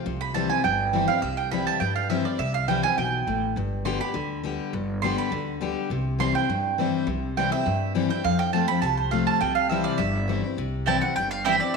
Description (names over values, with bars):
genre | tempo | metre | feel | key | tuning
bluegrass | 205 BPM | 4/4 | straight | C major | A4 = 441 Hz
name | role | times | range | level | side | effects
picked steel-string acoustic guitar | accompaniment | 0.0-11.8 s | F2 to G4 | -26 LUFS | left 6 dB | none
upright bass | bass | 0.1-11.8 s | G1 to G2 | -32 LUFS | right 2 dB | none
mandolin | stabs | 0.2-11.6 s | C4 to C6 | -26 LUFS | right 9 dB | none
mandolin | melody | 10.9-11.8 s | D5 to A5 | -24 LUFS | right 1 dB | none
room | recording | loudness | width
wet echo chamber reverb, RT60 1.4 s, small room ambience | 1960s-style stereo with parts hard left and right | -22 LUFS | side -4 dB against mid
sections
0.0-1.2 A section; 1.2-10.6 A section; 10.6-11.8 A section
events
mandolin solo 0.0-10.6, 10.6-11.8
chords
0.1 C; 3.6 G; 5.9 C; 8.2 F; 9.4 C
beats
| 0.06 0.35 0.65 0.94 | 1.23 1.52 1.81 2.11 | 2.40 2.69 2.98 3.28 | 3.57 3.86 4.15 4.45 | 4.74 5.03 5.32 5.61 | 5.91 6.20 6.49 6.78 | 7.08 7.37 7.66 7.95 | 8.24 8.54 8.83 9.12 | 9.41 9.71 10.00 10.29 | 10.58 10.87 11.17 11.46 | 11.75